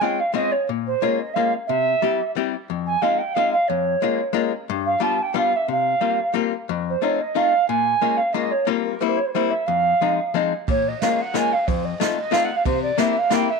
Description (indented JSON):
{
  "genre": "musette waltz",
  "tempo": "181 BPM",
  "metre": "3/4",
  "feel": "rubato",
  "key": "F minor",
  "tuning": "A4 = 437 Hz",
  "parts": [
    { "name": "alto ocarina", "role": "melody", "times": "0.0-13.6 s", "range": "Bb4 to A5", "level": "-21 LUFS", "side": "right 4 dB", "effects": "none" },
    { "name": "archtop guitar, miked and amplified", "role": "accompaniment", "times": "0.0-13.5 s", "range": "F2 to G4", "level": "-23 LUFS", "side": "left 12 dB", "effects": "none" },
    { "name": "jazz brush drum kit", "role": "drums", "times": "10.7-13.4 s", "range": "kick drum, ride cymbal, snare drum", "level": "-27 LUFS", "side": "right 5 dB", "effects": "none" }
  ],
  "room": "wet spring reverb, RT60 1.3 s, studio reverb",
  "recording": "1960s-style stereo",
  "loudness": "-19 LUFS",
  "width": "side -4 dB against mid",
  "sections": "0.0-10.7 A section; 10.7-13.6 B section",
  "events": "none",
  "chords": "0.0 Dbmaj7; 0.7 Bbm7; 1.7 C; 2.7 Fm7; 3.7 Bbm7/F; 4.7 G7; 5.7 C7sus4; 6.7 F7; 7.7 Bbm7; 8.7 C7sus4; 9.0 C7; 9.7 Fm7; 10.7 Bbm7; 11.7 F7; 12.7 C7",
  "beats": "0.03 0.36 | 0.69 1.02 1.35 | 1.68 2.02 2.36 | 2.70 3.04 3.37 | 3.70 4.03 4.36 | 4.68 5.01 5.35 | 5.68 6.02 6.36 | 6.69 7.03 7.36 | 7.69 8.02 8.34 | 8.67 9.00 9.34 | 9.67 10.00 10.34 | 10.68 11.02 11.35 | 11.68 12.01 12.34 | 12.66 12.98 13.31"
}